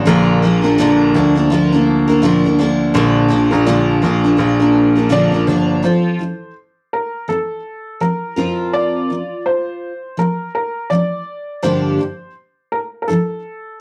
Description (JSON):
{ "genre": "acoustic pop", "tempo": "83 BPM", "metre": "4/4", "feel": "swing 60% on 16ths", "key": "Bb major", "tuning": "A4 = 439 Hz", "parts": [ { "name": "picked steel-string acoustic guitar", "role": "accompaniment", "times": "0.0-13.4 s", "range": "G2 to Bb4", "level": "-16 LUFS", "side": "equal", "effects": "double-tracked, cassette tape" }, { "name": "open-back banjo", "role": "arpeggios", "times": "0.0-6.4 s", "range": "D3 to F4", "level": "-30 LUFS", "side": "equal", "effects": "none" }, { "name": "clear grand piano", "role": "bass", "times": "0.0-5.8 s", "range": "G1 to D2", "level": "-20 LUFS", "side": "equal", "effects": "none" }, { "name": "clear upright piano", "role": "melody", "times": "5.1-13.8 s", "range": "A4 to D5", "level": "-23 LUFS", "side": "equal", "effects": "cassette tape" } ], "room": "moderate studio reverb, RT60 0.6 s", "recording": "home recording on cassette", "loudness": "-16 LUFS", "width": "mono", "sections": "0.1-5.8 A section; 5.8-13.8 B section", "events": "none", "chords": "0.1 Bb; 5.8 F; 8.4 Bbsus2/F; 11.6 Gm7" }